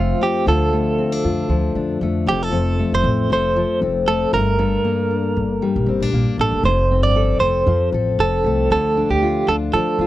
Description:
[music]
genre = acoustic pop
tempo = 116 BPM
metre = 4/4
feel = swing 55% on 16ths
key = F major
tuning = A4 = 440 Hz
[part]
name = direct-recorded clean electric guitar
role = melody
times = 0.0-10.1 s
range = F4 to D5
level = -20 LUFS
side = right 4 dB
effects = tremolo
[part]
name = fingerpicked steel-string acoustic guitar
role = accompaniment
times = 0.0-10.1 s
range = F2 to A4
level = -20 LUFS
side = left 4 dB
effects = none
[part]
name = upright bass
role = bass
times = 0.0-10.1 s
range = F1 to D3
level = -21 LUFS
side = equal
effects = none
[sound]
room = little or no reverb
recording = dry, close 1970s-style studio recording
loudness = -16 LUFS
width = side -14 dB against mid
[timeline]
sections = 0.0-6.6 A section; 6.6-10.1 B section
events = none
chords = 0.5 Dm; 2.3 F; 4.3 Gmadd9; 6.6 F; 8.7 Dm

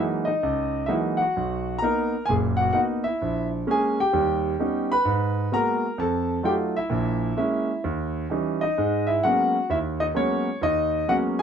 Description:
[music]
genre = solo jazz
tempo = 129 BPM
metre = 4/4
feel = swing 65% on 8ths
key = G# minor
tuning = A4 = 439 Hz
[part]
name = clear concert grand piano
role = solo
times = 0.0-11.4 s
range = F#1 to B5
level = -22 LUFS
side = equal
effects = none
[sound]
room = light reverb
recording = minimal, uncompressed stereo recording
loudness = -22 LUFS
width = side -7 dB against mid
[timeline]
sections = 0.0-11.4 A section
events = none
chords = 0.0 F#13; 1.3 Bmaj7; 3.2 A#m7b5; 4.1 D#7b13; 5.1 G#m9; 6.0 F7b9; 6.9 A#m7b5; 7.8 D#7b9; 8.8 G#m11

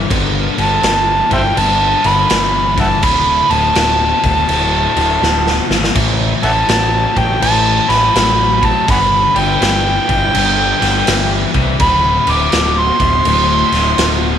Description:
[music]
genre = blues rock power trio and southern rock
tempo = 82 BPM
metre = 4/4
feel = swing 65% on 8ths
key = unclear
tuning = A4 = 441 Hz
[part]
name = overdriven tonewheel organ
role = sustained chords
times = 0.0-14.4 s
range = A#3 to G5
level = -28 LUFS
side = right 13 dB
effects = slow rotary speaker
[part]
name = crunchy overdriven guitar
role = riff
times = 0.0-14.4 s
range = D2 to F#3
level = -20 LUFS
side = left 12 dB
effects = none
[part]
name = growling picked electric bass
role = bass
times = 0.0-14.4 s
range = D1 to C2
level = -18 LUFS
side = equal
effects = overdrive
[part]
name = raw garage drum kit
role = drums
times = 0.1-14.2 s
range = crash cymbal, kick drum, snare drum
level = -16 LUFS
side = right 1 dB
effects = none
[part]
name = overdriven harmonica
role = melody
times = 0.6-14.2 s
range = C5 to D6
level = -14 LUFS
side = right 1 dB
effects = none
[sound]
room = light reverb, small room ambience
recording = 1960s-style stereo with parts hard left and right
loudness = -11 LUFS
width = side -9 dB against mid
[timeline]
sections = 0.0-14.4 A section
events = harmonica solo 0.0-14.4; drum fill 5.2-6.0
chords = 0.0 G7#9; 3.0 D7#9; 6.0 A7#9; 8.9 G7; 11.8 D7#9

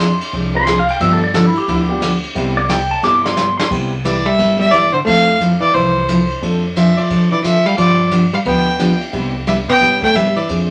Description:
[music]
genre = country, western swing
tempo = 177 BPM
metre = 4/4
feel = swing 63% on 8ths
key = C major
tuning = A4 = 441 Hz
[part]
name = pedal steel guitar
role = second line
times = 0.0-3.7 s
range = E4 to D6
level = -19 LUFS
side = equal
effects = none
[part]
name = picked steel-string acoustic guitar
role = accompaniment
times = 0.0-10.7 s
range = C3 to A4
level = -20 LUFS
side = equal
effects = none
[part]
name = upright bass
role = bass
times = 0.0-10.7 s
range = G1 to D3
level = -28 LUFS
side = equal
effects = none
[part]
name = vintage brush drum kit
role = drums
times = 0.0-10.6 s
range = crash cymbal, hi-hat, kick drum, ride cymbal, snare drum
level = -27 LUFS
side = equal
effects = none
[part]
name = warm upright piano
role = accompaniment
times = 0.5-6.6, 8.8-9.3 s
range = G3 to B4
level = -26 LUFS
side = equal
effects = none
[part]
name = clear fiddle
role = melody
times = 4.0-10.5 s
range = C5 to G5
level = -18 LUFS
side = equal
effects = none
[part]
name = hollow-body jazz guitar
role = second line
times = 4.1-10.5 s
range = D3 to B3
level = -20 LUFS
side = equal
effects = none
[sound]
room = wet studio ambience, RT60 0.5 s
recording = none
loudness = -15 LUFS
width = mono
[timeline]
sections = 0.0-3.7 A section; 3.7-10.7 B section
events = pedal steel guitar solo 0.0-3.7; drum fill 3.0-3.7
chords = 0.0 Fm6; 1.0 G7; 2.4 Cmaj7; 5.1 Fmaj7; 6.4 Dm7/F; 7.8 G7; 9.1 Cmaj7

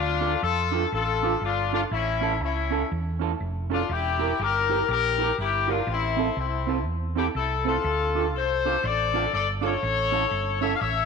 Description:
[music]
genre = ska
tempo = 121 BPM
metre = 4/4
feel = swing 62% on 8ths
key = D minor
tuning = A4 = 439 Hz
[part]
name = clear horn section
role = melody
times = 0.0-11.1 s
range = C4 to F5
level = -25 LUFS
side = left 7 dB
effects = none
[part]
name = hollow-body short-scale fingered electric bass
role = bass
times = 0.0-11.1 s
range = E1 to F2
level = -29 LUFS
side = right 1 dB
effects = none
[part]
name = mellow electric guitar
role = accompaniment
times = 0.2-10.7 s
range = C4 to Bb4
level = -30 LUFS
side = right 11 dB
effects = analog chorus
[sound]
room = moderate echo chamber reverb, RT60 2.1 s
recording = 1960s-style stereo with parts hard left and right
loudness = -23 LUFS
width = side -5 dB against mid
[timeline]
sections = 0.0-11.1 A section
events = none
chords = 0.0 Dm; 1.9 A; 3.9 Edim; 5.9 Am; 7.8 Dm; 9.8 A

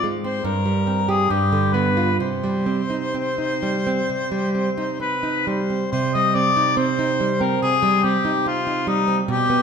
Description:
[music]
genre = romantic duo for harmonica and classical guitar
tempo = 62-73 BPM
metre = 4/4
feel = rubato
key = C minor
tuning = A4 = 440 Hz
[part]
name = warm harmonica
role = melody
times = 0.0-9.6 s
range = Eb4 to Eb5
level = -21 LUFS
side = left 4 dB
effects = none
[part]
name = nylon-string guitar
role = accompaniment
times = 0.0-9.6 s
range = G2 to G4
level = -21 LUFS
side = right 3 dB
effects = none
[sound]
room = wet scoring stage reverb, RT60 1.7 s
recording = minimal, uncompressed stereo recording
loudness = -18 LUFS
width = side -6 dB against mid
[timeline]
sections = 0.0-5.9 A section; 5.9-9.6 A section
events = none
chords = 0.4 C5/G; 1.3 G7; 2.2 Cm

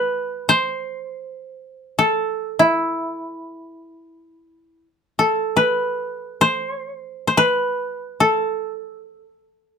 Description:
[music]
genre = japanese traditional, Japanese chamber music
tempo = free time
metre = none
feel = none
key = A minor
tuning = A4 = 440 Hz
[part]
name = koto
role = solo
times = 0.0-9.8 s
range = E4 to C5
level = -18 LUFS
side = equal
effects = none
[sound]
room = light reverb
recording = none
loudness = -18 LUFS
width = side -6 dB against mid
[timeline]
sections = 0.0-9.8 A section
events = none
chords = none

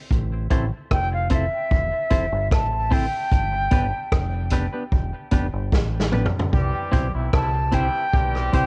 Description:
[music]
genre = roots reggae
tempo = 75 BPM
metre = 4/4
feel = straight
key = C major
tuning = A4 = 439 Hz
[part]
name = deep dub fingered electric bass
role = bass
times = 0.1-8.7 s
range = E1 to C2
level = -27 LUFS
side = equal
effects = transformer saturation
[part]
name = vintage drum kit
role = drums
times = 0.1-8.7 s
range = hi-hat, kick drum, rim click, snare drum, toms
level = -24 LUFS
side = equal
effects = cassette tape
[part]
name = semi-hollow electric guitar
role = accompaniment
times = 0.5-8.7 s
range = B3 to C5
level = -32 LUFS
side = equal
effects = cassette tape, dub echo
[part]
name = silver concert flute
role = melody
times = 0.9-8.7 s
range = E5 to A5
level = -28 LUFS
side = equal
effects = dub echo
[part]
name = warm horn section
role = second line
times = 6.5-8.7 s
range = C3 to G4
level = -32 LUFS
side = equal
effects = cassette tape, dub echo
[sound]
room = small room ambience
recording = home recording on cassette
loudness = -22 LUFS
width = mono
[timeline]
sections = 0.0-6.5 A section; 6.5-8.7 B section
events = drum fill 5.7-6.5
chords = 0.1 Am; 3.3 G; 6.5 C

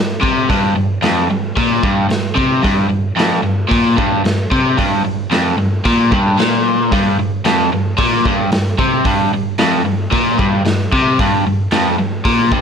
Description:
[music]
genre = garage rock duo or trio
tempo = 112 BPM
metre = 4/4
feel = straight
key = G minor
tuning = A4 = 440 Hz
[part]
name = overdriven electric guitar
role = riff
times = 0.0-12.6 s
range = F2 to C3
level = -14 LUFS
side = equal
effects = none
[part]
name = raw garage drum kit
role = drums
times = 0.2-12.6 s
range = hi-hat, kick drum, snare drum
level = -19 LUFS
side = equal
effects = none
[sound]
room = moderate club reverb, RT60 0.8 s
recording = none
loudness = -13 LUFS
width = side -7 dB against mid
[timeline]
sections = 0.0-12.6 A section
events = none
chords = none

